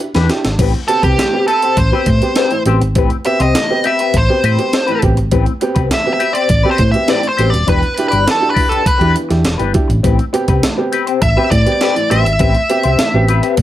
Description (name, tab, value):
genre	funk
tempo	102 BPM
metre	4/4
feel	straight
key	A minor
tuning	A4 = 440 Hz
part	clean electric guitar	accompaniment	0.0-13.6 s	C4 to D5	-20 LUFS	left 9 dB	wah, harmonic tremolo, plate reverb
part	dark upright piano	stabs	0.0-13.3 s	A2 to G4	-19 LUFS	right 2 dB	plate reverb
part	breakbeat sampler-style drum kit	drums	0.1-13.6 s	crash cymbal, hi-hat, kick drum, snare drum	-17 LUFS	equal	none
part	hollow-body short-scale fingered electric bass	bass	0.2-13.6 s	D#1 to A2	-15 LUFS	equal	none
part	nasal lead guitar with a parked wah	melody	0.9-13.5 s	G4 to E5	-15 LUFS	equal	overdrive, plate reverb
room	light reverb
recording	none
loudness	-11 LUFS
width	side -13 dB against mid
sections	0.6-13.6 A section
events	drum fill 0.0-0.6; lead electric guitar solo 0.6-13.6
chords	0.0 Em7; 0.6 Am9; 7.7 Em7; 10.0 Am9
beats	0.00 | 0.59 1.18 1.77 2.37 | 2.96 3.55 4.14 4.73 | 5.32 5.91 6.50 7.09 | 7.68 8.28 8.87 9.46 | 10.04 10.63 11.22 11.81 | 12.40 12.99 13.58